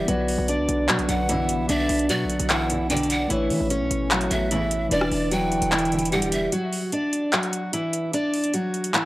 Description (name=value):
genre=hip hop, trap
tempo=149 BPM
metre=4/4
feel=half-time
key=unclear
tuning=A4 = 439 Hz
part: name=fingerpicked steel-string acoustic guitar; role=melody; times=0.0-9.1 s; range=E3 to D5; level=-25 LUFS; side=equal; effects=low-pass filter, analog delay
part: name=breathy mellow pan flute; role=second line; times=0.0-6.5 s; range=D5 to G5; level=-28 LUFS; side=right 1 dB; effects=analog delay
part: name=mellow tine electric piano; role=accompaniment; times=0.0-6.5 s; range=E3 to D5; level=-29 LUFS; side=left 1 dB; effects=low-pass filter
part: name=dark analog pad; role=sustained chords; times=0.0-6.5 s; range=B2 to E4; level=-34 LUFS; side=equal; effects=chorus
part: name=hard-hitting 808-style bass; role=bass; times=0.0-6.5 s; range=E1 to E3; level=-29 LUFS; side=equal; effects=none
part: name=trap drum kit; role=drums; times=0.1-9.0 s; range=handclaps, hi-hat, rim click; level=-25 LUFS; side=equal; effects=overdrive
part: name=dark studio string section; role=stabs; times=1.1-6.3 s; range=E2 to D3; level=-30 LUFS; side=right 1 dB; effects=none
room=studio ambience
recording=dry, gritty hardware recording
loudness=-21 LUFS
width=side -17 dB against mid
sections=0.0-6.5 A section; 6.5-9.1 B section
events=break 6.5-9.1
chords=0.1 Bm; 3.3 Aadd9; 4.9 Em7; 6.5 Dadd9